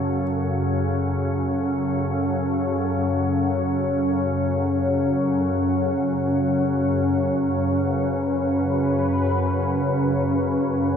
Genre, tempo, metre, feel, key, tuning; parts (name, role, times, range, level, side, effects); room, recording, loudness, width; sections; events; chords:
ambient; free time; F# minor; A4 = 440 Hz
sweeping resonant pad; sustained chords; 0.0-11.0 s; F#3 to B4; -23 LUFS; equal; chorus
organ-like drone; drone; 0.0-11.0 s; F#2 to C#3; -23 LUFS; left 1 dB; ensemble chorus, built-in reverb
wet cathedral reverb, RT60 6.0 s; cassette tape, small room ambience; -20 LUFS; side -7 dB against mid
0.0-11.0 A section
0.0 F#m